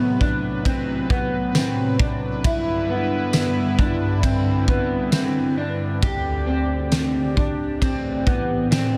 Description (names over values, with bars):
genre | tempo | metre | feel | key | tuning
dream pop | 67 BPM | 4/4 | straight | A dorian | A4 = 442 Hz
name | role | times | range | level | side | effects
phased analog pad | sustained chords | 0.0-9.0 s | D2 to D5 | -27 LUFS | equal | phaser, chorus
electric guitar at the edge of break-up | arpeggios | 0.0-9.0 s | B3 to G4 | -26 LUFS | equal | lush chorus, digital delay
loose indie drum kit | drums | 0.2-8.9 s | kick drum, ride cymbal, snare drum, tambourine | -26 LUFS | equal | none
room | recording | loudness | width
light reverb, small room ambience | none | -21 LUFS | mono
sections
0.0-9.0 A section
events
none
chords
0.0 Am69; 2.4 G6; 6.0 D7sus4; 7.8 Am7